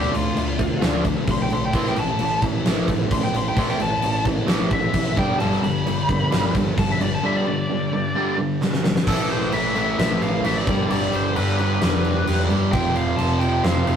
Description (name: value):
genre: hard rock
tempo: 131 BPM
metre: 4/4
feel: straight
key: A minor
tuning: A4 = 435 Hz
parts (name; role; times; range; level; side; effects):
- biting lead guitar; melody; 0.0-14.0 s; F4 to C6; -26 LUFS; left 1 dB; overdrive
- crunchy overdriven guitar; riff; 0.0-14.0 s; F2 to D4; -25 LUFS; right 3 dB; none
- overdriven semi-hollow guitar; riff; 0.0-14.0 s; F2 to D4; -28 LUFS; left 4 dB; none
- sludgy distorted guitar; riff; 0.0-14.0 s; F2 to D4; -32 LUFS; left 1 dB; none
- hollow-body short-scale fingered electric bass; bass; 0.0-14.0 s; F1 to G2; -28 LUFS; equal; none
- huge arena drum kit; drums; 0.1-14.0 s; crash cymbal, kick drum, snare drum; -23 LUFS; equal; none
room: moderate stone room reverb, RT60 1.4 s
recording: rough rehearsal-room recording, tube saturation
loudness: -18 LUFS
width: side -8 dB against mid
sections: 0.0-9.1 A section; 9.1-14.0 B section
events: lead electric guitar solo 0.0-9.1; drum fill 8.6-9.1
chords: 0.0 Dm; 1.7 A5; 5.2 G; 9.1 A5; 10.7 G; 12.7 F5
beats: 0.37 0.83 1.28 | 1.74 2.20 2.66 3.12 | 3.58 4.03 4.49 4.95 | 5.41 5.87 6.32 6.78 | 7.24 7.70 8.15 8.61 | 9.07 9.53 9.98 10.44 | 10.90 11.36 11.82 12.27 | 12.73 13.19 13.64